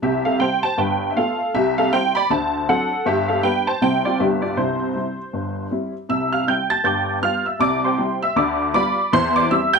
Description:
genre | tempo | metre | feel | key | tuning
jazz, stride piano | 158 BPM | 4/4 | swing 60% on 8ths | C major | A4 = 440 Hz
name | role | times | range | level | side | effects
honky-tonk upright piano | solo | 0.0-9.8 s | G1 to A6 | -18 LUFS | equal | none
room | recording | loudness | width
moderate small room reverb, RT60 0.5 s | none | -18 LUFS | side -5 dB against mid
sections
0.0-6.1 A section; 6.1-9.8 A section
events
none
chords
0.0 C5; 0.8 G9; 1.5 C; 2.3 D7; 3.1 G; 3.8 C; 4.2 G; 4.6 C; 6.8 G7; 7.6 C; 8.4 G7/D; 9.1 C/E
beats
| 0.02 0.40 0.78 1.16 | 1.54 1.92 2.30 2.68 | 3.06 3.44 3.82 4.20 | 4.58 4.96 5.33 5.71 | 6.09 6.47 6.85 7.23 | 7.61 7.99 8.37 8.74 | 9.12 9.50

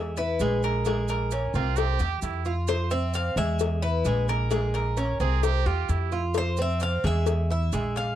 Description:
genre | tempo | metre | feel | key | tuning
latin, Cuban son and guajira | 131 BPM | 4/4 | straight | F harmonic minor | A4 = 439 Hz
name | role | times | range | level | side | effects
Cuban tres | melody | 0.0-8.2 s | Bb4 to F5 | -31 LUFS | left 2 dB | none
Cuban tres | arpeggios | 0.0-8.2 s | Ab3 to G4 | -30 LUFS | right 3 dB | none
upright bass | bass | 0.0-8.2 s | Bb1 to F2 | -26 LUFS | equal | none
maracas | percussion | 0.2-8.2 s | none | -42 LUFS | right 22 dB | none
cowbell | percussion | 0.4-8.2 s | none | -33 LUFS | left 10 dB | none
clear trumpet | second line | 1.5-6.2 s | E4 to Ab4 | -31 LUFS | right 17 dB | none
room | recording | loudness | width
light reverb | dry, close 1970s-style studio recording | -23 LUFS | side -12 dB against mid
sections
0.0-8.2 A section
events
none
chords
0.0 E; 0.9 Bbm7; 1.8 C; 2.7 Fm; 3.6 E; 4.5 Bbm7; 5.4 C; 6.4 Fm; 7.3 E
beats
0.40 | 0.86 1.31 1.77 2.23 | 2.69 3.14 3.60 4.06 | 4.52 4.97 5.43 5.89 | 6.35 6.81 7.27 7.73

